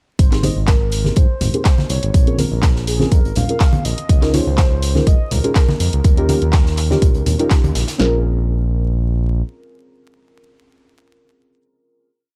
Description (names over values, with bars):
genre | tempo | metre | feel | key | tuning
deep house | 123 BPM | 4/4 | swing 53% on 16ths | Bb dorian | A4 = 440 Hz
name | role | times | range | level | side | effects
mellow horn-like synth lead | melody | 0.2-7.5 s | Ab4 to F5 | -31 LUFS | equal | subtle chorus, analog delay
smooth synth bass | bass | 0.2-9.4 s | Ab1 to Ab2 | -21 LUFS | equal | sidechain pumping
house drum kit | drums | 0.2-8.1 s | kick drum, snare drum | -16 LUFS | equal | none
house drum kit | drums | 0.2-8.0 s | handclaps, hi-hat | -28 LUFS | equal | none
natural country drum kit | drums | 0.2-8.0 s | hi-hat, snare drum | -35 LUFS | equal | sidechain pumping on hats, high-pass filter on hats, high-pass filter on snare, high-pass filter on room
deep mellow chord stab | stabs | 0.3-12.1 s | C4 to Db5 | -24 LUFS | equal | chorus, sidechain pumping
congas | percussion | 0.4-7.7 s | none | -25 LUFS | equal | none
room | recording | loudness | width
studio ambience | dry, gritty hardware recording, transformer saturation, vinyl crackle | -16 LUFS | mono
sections
0.2-8.0 groove; 8.0-11.9 final chord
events
filter sweep on synth stab 0.2-8.0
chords
0.2 Abmaj9; 2.1 Bbm7; 4.1 Db69; 6.0 Eb7; 8.0 Bbm7